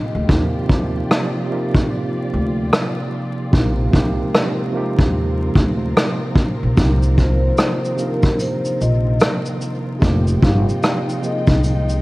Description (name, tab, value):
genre	lo-fi hip hop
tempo	74 BPM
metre	4/4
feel	swing 61% on 16ths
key	C minor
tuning	A4 = 440 Hz
part	vibraphone with soft mallets	melody	0.0-0.3, 7.2-12.0 s	Bb4 to F5	-26 LUFS	left 2 dB	analog delay
part	tine electric piano	accompaniment	0.0-12.0 s	C3 to Bb4	-22 LUFS	right 1 dB	medium stereo tremolo, cassette tape
part	muted studio string section	sustained chords	0.0-12.0 s	Eb3 to G5	-31 LUFS	left 1 dB	none
part	upright bass	bass	0.1-12.0 s	F1 to Eb2	-19 LUFS	equal	none
part	vintage brush drum kit	drums	0.3-12.0 s	hi-hat, kick drum, rim click, shaker	-17 LUFS	equal	vintage 12-bit sampler grit
room	light reverb, studio reverb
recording	echo-heavy mix, vinyl crackle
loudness	-15 LUFS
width	side -20 dB against mid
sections	0.0-12.0 A section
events	break 0.0-6.8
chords	0.3 Ebmaj9; 3.5 Bb9sus4; 6.8 Cm9; 10.0 Fm9